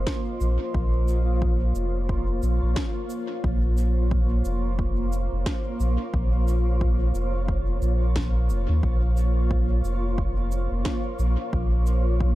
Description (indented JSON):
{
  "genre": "ambient dub",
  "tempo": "89 BPM",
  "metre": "4/4",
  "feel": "swing 59% on 16ths",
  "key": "Bb minor",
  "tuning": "A4 = 442 Hz",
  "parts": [
    { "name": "granular cloud pad", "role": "sustained chords", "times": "0.0-12.3 s", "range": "Bb3 to Eb5", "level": "-30 LUFS", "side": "equal", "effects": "built-in reverb" },
    { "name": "warm sub bass", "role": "bass", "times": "0.0-12.3 s", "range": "F1 to Eb2", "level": "-22 LUFS", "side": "equal", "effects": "none" },
    { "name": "electronic kick drum", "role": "drums", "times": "0.1-12.3 s", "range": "none", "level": "-28 LUFS", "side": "equal", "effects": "overdrive" },
    { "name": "electronic snare drum and cabasa", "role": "drums", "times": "0.1-12.0 s", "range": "none", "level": "-36 LUFS", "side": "equal", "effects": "overdrive, dub echo" }
  ],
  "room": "digital ambience",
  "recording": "dark, warm production",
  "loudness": "-22 LUFS",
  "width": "side -16 dB against mid",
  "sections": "0.0-12.3 A section",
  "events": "none",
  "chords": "0.0 Bbmadd9"
}